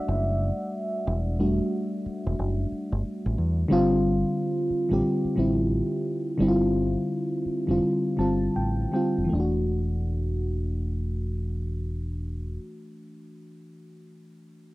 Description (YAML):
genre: R&B, neo-soul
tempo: 77-91 BPM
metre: 4/4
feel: swing 63% on 16ths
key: E minor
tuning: A4 = 440 Hz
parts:
  - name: mellow FM electric piano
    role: accompaniment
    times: 0.0-14.7 s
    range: D3 to A5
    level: -26 LUFS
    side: equal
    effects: chorus, cassette tape
  - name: deep dub fingered electric bass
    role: bass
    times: 0.1-12.6 s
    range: E1 to E2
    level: -27 LUFS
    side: equal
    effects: none
room: moderate booth ambience, RT60 0.2 s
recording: home recording on cassette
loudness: -24 LUFS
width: side -19 dB against mid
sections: 0.0-3.7 A section; 3.7-9.3 B section; 9.3-12.4 C section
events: FM electric piano solo 0.0-3.7; slowing down 3.7-9.3; FM electric piano fill 7.8-9.3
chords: 0.0 Em11; 3.7 G9sus4; 9.3 E9sus4